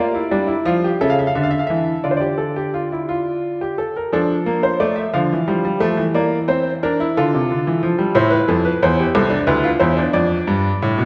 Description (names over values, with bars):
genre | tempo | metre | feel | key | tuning
classical, baroque-style 3-part fugue for grand piano | 59 BPM (dotted quarters) | 6/8 | straight | D minor | A4 = 437 Hz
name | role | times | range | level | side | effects
bright baby grand piano | solo | 0.0-11.1 s | C2 to F5 | -18 LUFS | equal | none
room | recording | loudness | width
wet scoring stage reverb, RT60 1.6 s | dark, warm production | -18 LUFS | mono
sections
0.0-4.1 A section; 4.1-11.1 B section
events
none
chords
0.0 Bb; 1.0 A/C#; 2.0 Dm; 4.1 Dm/F; 5.1 Dm; 6.2 C9/E; 7.2 Dm; 8.2 Am; 9.2 Am/C; 10.2 Dm/F